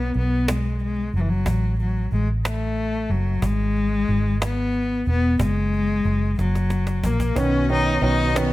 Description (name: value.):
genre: six-eight pop ballad.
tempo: 61 BPM (dotted quarters).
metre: 6/8.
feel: straight.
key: B major.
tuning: A4 = 440 Hz.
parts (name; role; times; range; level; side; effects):
rich cello; melody; 0.0-8.5 s; E3 to D#4; -23 LUFS; left 3 dB; none.
vintage muted fingered electric bass; bass; 0.0-8.5 s; E1 to B1; -22 LUFS; equal; none.
cajon; drums; 0.1-8.5 s; none; -28 LUFS; equal; none.
warm baby grand piano; accompaniment; 7.4-8.5 s; D#3 to C#4; -23 LUFS; right 3 dB; none.
clear studio string section; sustained chords; 7.4-8.5 s; B3 to D#5; -31 LUFS; left 1 dB; none.
room: studio reverb.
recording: none.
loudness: -19 LUFS.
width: side -17 dB against mid.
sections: 0.0-8.5 A section.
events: drum fill 6.4-7.4.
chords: 0.0 B5; 1.5 F#m/A; 3.4 G#m; 5.4 F#sus2; 6.4 F#; 7.4 Badd9.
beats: 0.48 | 1.46 2.44 | 3.43 4.41 | 5.39 6.38 | 7.37 8.35.